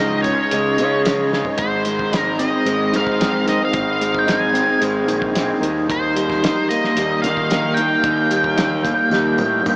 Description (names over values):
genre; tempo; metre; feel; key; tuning
psychedelic rock; 112 BPM; 4/4; straight; unclear; A4 = 440 Hz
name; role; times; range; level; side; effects
octave-fuzz lead guitar; melody; 0.0-9.8 s; C5 to Ab5; -23 LUFS; equal; distortion, diffuse ambient delay
tonewheel organ; sustained chords; 0.0-9.8 s; G3 to C6; -29 LUFS; equal; slow rotary speaker
electric guitar through a small old amp; riff; 0.0-9.8 s; Ab2 to Eb4; -23 LUFS; equal; harmonic tremolo
fuzz fingered electric bass; bass; 0.0-9.8 s; Ab1 to Eb3; -27 LUFS; equal; overdrive
cloth-damped thuddy drum kit; drums; 0.2-9.8 s; hi-hat, kick drum, snare drum, toms; -28 LUFS; equal; none
tambourine; percussion; 0.3-9.8 s; none; -43 LUFS; equal; none
room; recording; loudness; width
moderate huge ambient reverb, RT60 7.3 s; dreamy mix soaked in reverb, small speaker sound; -18 LUFS; mono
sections
0.0-9.8 A section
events
drum fill 1.3, 9.1-9.8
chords
0.0 Dbsus2; 1.6 Ab; 5.6 Eb